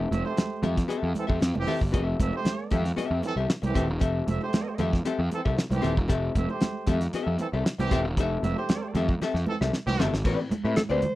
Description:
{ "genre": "funk", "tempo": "116 BPM", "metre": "4/4", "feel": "straight", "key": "unclear", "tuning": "A4 = 436 Hz", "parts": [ { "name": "archtop guitar, miked and amplified", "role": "accompaniment", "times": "0.0-11.1 s", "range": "C4 to E5", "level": "-30 LUFS", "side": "left 4 dB", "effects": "none" }, { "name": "fuzz picked electric bass", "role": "bass", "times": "0.0-11.0 s", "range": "D#1 to A2", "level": "-28 LUFS", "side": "equal", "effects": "overdrive" }, { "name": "warm horn section", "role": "second line", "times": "0.1-10.1 s", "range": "E3 to E5", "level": "-31 LUFS", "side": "right 3 dB", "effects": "none" }, { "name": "cloth-damped thuddy drum kit", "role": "drums", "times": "0.1-11.2 s", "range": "crash cymbal, hi-hat, kick drum, snare drum", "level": "-27 LUFS", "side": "equal", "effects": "none" }, { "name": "congas", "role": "percussion", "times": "0.1-11.2 s", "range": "none", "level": "-33 LUFS", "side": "right 3 dB", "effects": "none" }, { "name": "breathy alto saxophone", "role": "melody", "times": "10.8-11.2 s", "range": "A4 to C5", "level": "-26 LUFS", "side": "equal", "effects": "none" } ], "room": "little or no reverb", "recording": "dry, close 1970s-style studio recording", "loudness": "-24 LUFS", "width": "side -16 dB against mid", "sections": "0.0-10.3 A section", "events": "drum fill 9.2-10.3", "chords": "0.0 Fmaj9; 10.3 Am11" }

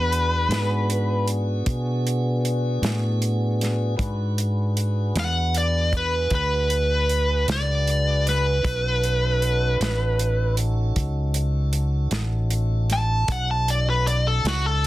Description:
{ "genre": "slow blues", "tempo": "52 BPM (dotted quarters)", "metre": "12/8", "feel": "straight", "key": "unclear", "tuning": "A4 = 439 Hz", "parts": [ { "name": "smooth overdriven lead guitar", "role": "melody", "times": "0.0-14.9 s", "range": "F#4 to A5", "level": "-23 LUFS", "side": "equal", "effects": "none" }, { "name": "mellow tonewheel organ", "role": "sustained chords", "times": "0.0-14.9 s", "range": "B3 to B4", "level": "-31 LUFS", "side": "equal", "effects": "slow rotary speaker" }, { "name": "fingered electric bass", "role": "bass", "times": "0.0-14.9 s", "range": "A1 to B2", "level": "-22 LUFS", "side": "equal", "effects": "none" }, { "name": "warm soul drum kit", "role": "drums", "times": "0.1-14.9 s", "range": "hi-hat, kick drum, snare drum", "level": "-27 LUFS", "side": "right 1 dB", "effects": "none" } ], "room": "light reverb", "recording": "dense, heavily limited modern master", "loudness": "-20 LUFS", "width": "side -16 dB against mid", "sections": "0.0-14.9 A section", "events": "none", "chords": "0.0 E9; 8.6 B9" }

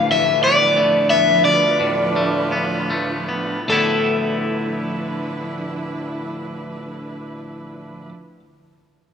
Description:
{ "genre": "rock", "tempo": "49-61 BPM (dotted quarters)", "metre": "6/8", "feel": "straight", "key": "D dorian", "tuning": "A4 = 440 Hz", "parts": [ { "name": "overdriven semi-hollow guitar", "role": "melody", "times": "0.0-8.1 s", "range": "A4 to F5", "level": "-17 LUFS", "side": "left 2 dB", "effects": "analog delay" }, { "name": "rich studio string section", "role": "sustained chords", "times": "0.0-8.1 s", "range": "E3 to B4", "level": "-26 LUFS", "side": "right 2 dB", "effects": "none" }, { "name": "twangy electric guitar", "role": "arpeggios", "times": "0.0-8.1 s", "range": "D2 to E4", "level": "-24 LUFS", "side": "left 1 dB", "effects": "analog delay" } ], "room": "moderate concert hall reverb, RT60 2.3 s", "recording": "none", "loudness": "-16 LUFS", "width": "side -7 dB against mid", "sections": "0.0-3.7 A section; 3.7-8.6 B section", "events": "slowing down 0.0-3.7", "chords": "0.0 Dm69" }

